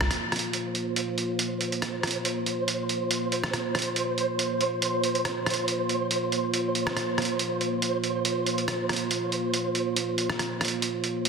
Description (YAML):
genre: deep dubstep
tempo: 140 BPM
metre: 4/4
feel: swing 54% on 16ths, half-time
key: unclear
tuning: A4 = 443 Hz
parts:
  - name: dark analog pad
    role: sustained chords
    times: 0.0-11.3 s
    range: Bb3 to F4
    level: -30 LUFS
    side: right 1 dB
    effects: chorus
  - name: trip hop sampler-style drum kit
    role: drums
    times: 0.0-11.3 s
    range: hi-hat, rim click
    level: -29 LUFS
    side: right 2 dB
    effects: soft clipping on snare
  - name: flickering grainy texture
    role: texture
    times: 0.6-11.3 s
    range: C5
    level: -30 LUFS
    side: right 2 dB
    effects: built-in reverb
room: wet echo chamber reverb, RT60 2.1 s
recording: dense, heavily limited modern master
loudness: -25 LUFS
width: side -5 dB against mid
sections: 0.1-11.3 A section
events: band accent 0.0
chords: 0.1 Bbsus2